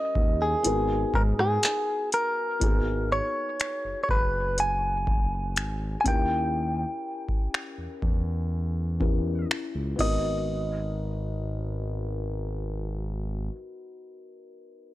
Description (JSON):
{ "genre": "contemporary R&B", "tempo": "61 BPM", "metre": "4/4", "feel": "straight", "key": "G# minor", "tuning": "A4 = 443 Hz", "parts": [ { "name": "direct-recorded clean electric guitar", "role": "melody", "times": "0.0-13.5 s", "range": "G#4 to G#5", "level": "-28 LUFS", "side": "equal", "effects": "low-pass filter, tape echo" }, { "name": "felt-muted upright piano", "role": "accompaniment", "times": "0.0-14.9 s", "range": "G3 to A#4", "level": "-34 LUFS", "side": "left 3 dB", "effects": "low-pass filter" }, { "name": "smooth gliding synth bass", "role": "bass", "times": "0.2-13.5 s", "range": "F#1 to G#2", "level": "-30 LUFS", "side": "equal", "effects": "none" }, { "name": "booming analog drum machine", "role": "drums", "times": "0.2-10.2 s", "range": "crash cymbal, finger snaps, handclaps, hi-hat, kick drum, rim click", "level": "-26 LUFS", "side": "equal", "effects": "none" } ], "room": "little or no reverb", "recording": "dry, gritty hardware recording", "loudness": "-25 LUFS", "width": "side -16 dB against mid", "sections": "0.0-2.6 A section; 2.6-10.5 B section; 10.5-14.4 C section", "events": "filter sweep 2.6-10.5", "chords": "0.0 D#7b9; 0.6 G#m9; 2.6 G#m7; 6.1 D#7b9; 10.0 G#m9" }